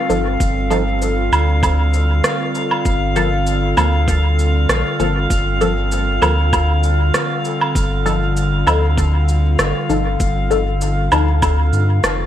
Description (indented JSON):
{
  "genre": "ambient dub",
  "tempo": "98 BPM",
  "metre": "4/4",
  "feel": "swing 53% on 16ths",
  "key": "unclear",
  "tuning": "A4 = 441 Hz",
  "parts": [
    { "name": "warbly tape-like pad", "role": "sustained chords", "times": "0.0-12.3 s", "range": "D3 to A4", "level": "-22 LUFS", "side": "equal", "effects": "chorus, built-in reverb" },
    { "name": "drifting glass-harmonics texture", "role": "texture", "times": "0.0-12.3 s", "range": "F5", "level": "-23 LUFS", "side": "left 1 dB", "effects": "chorus, built-in reverb" },
    { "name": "filtered dub chord stab", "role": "stabs", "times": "0.1-11.3 s", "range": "F3 to A4", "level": "-23 LUFS", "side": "left 2 dB", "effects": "phaser, analog chorus, dub echo" },
    { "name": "warm sub bass", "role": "bass", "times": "0.1-12.3 s", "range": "F1 to G2", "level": "-17 LUFS", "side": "equal", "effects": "none" },
    { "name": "electronic cabasa, woodblock and rim click", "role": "drums", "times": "0.1-12.2 s", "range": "none", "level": "-21 LUFS", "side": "right 2 dB", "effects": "dub echo" },
    { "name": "electronic kick drum", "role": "drums", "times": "0.4-11.6 s", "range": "none", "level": "-20 LUFS", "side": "equal", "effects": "overdrive" }
  ],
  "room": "light reverb",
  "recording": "vinyl crackle",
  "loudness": "-14 LUFS",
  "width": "side -11 dB against mid",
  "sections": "0.0-12.3 A section",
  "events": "none",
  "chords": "0.0 F/G; 2.9 Gm9; 7.8 F7/G"
}